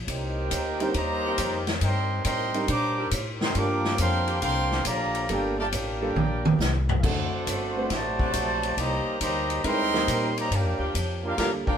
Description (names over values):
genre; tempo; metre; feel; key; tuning
jazz, big band swing; 138 BPM; 4/4; swing 67% on 8ths; G minor; A4 = 440 Hz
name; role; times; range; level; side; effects
upright bass; bass; 0.0-11.7 s; G1 to Bb2; -30 LUFS; left 1 dB; none
clear trumpet section; melody; 0.1-11.8 s; D4 to D6; -28 LUFS; equal; none
bright trombone section; second line; 0.1-11.8 s; C3 to G4; -32 LUFS; right 2 dB; none
swinging big-band drum kit; drums; 0.1-11.7 s; crash cymbal, hi-hat, kick drum, ride cymbal, snare drum, toms; -29 LUFS; equal; none
clear baby grand piano; accompaniment; 0.8-11.8 s; G3 to C5; -31 LUFS; right 2 dB; none
warm saxophone section; sustained chords; 1.2-11.3 s; D3 to Bb4; -36 LUFS; left 2 dB; none
room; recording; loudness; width
moderate stone room reverb, RT60 1.3 s; band playing live in one room; -23 LUFS; side -8 dB against mid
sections
0.0-11.8 A section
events
drum fill 6.2-7.0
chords
0.1 Cm7; 3.6 Gm7; 7.0 D7; 8.8 Cm7; 10.5 Gm7